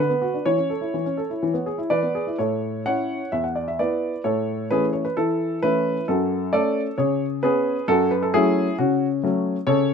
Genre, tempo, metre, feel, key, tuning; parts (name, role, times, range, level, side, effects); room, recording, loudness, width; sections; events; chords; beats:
classical-period piano sonatina; 121-136 BPM; 4/4; rubato; A major; A4 = 440 Hz
warm baby grand piano; solo; 0.0-9.9 s; E2 to F#5; -20 LUFS; equal
light reverb; -20 LUFS; side -6 dB against mid
0.0-2.4 A section; 2.4-9.9 B section
0.5 A/E; 1.4 E; 2.4 A; 3.3 E5; 4.3 A; 6.1 F#m; 7.0 C#5; 7.9 F#m
| 0.46 0.94 1.42 1.90 | 2.39 2.86 3.33 3.79 | 4.25 4.71 5.16 5.62 | 6.08 6.54 6.99 7.44 | 7.88 8.34 8.79 9.23 | 9.68